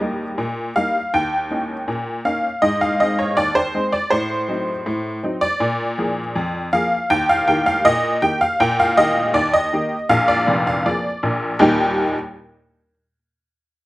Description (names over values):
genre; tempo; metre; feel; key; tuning
ragtime piano; 80 BPM; 2/4; straight; Eb major; A4 = 438 Hz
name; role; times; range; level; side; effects
honky-tonk upright piano; solo; 0.0-12.2 s; F1 to G5; -17 LUFS; equal; none
room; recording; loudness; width
little or no reverb; recorded outdoors, with no room sound; -17 LUFS; side -18 dB against mid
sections
0.0-11.6 A section; 11.6-13.1 B section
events
none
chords
0.0 Eb; 1.1 Eb7; 2.6 Ab; 4.1 Adim7; 5.6 Bb7; 7.1 Eb; 10.1 Bb7; 11.6 Eb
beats
0.38 | 1.12 1.87 | 2.62 3.36 | 4.11 4.86 | 5.61 6.35 | 7.10 7.84 | 8.59 9.34 | 10.09 10.85 | 11.60